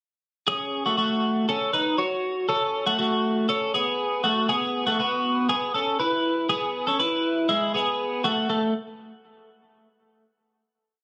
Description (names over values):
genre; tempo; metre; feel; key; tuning
indie pop; 120 BPM; 4/4; straight; F# dorian; A4 = 441 Hz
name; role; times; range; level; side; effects
twelve-string electric guitar; solo; 0.5-8.7 s; G#3 to C#5; -24 LUFS; equal; vibrato effect
room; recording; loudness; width
moderate studio reverb, RT60 0.6 s; recorded on a phone in the room, club reverb; -24 LUFS; mono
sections
0.5-8.5 verse; 8.5-10.5 final note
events
none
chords
0.5 F#m; 4.5 Eadd9; 8.5 N.C.